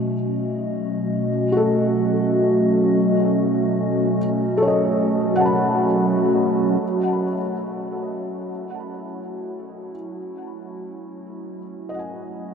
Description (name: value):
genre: ambient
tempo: free time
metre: none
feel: none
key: F# dorian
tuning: A4 = 440 Hz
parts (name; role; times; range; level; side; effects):
- warbly tape-like pad; sustained chords; 0.0-12.5 s; B2 to D#5; -21 LUFS; equal; chorus, built-in reverb
- felt-muted upright piano; arpeggios; 0.0-12.5 s; F#4 to B5; -25 LUFS; left 1 dB; ping-pong delay
room: wet huge ambient reverb, RT60 8.9 s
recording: dark, warm production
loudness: -18 LUFS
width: side -6 dB against mid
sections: 0.0-6.8 A section; 6.8-12.5 A section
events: filter sweep on ambient pad 0.0-6.8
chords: 0.0 B9; 6.8 F#m7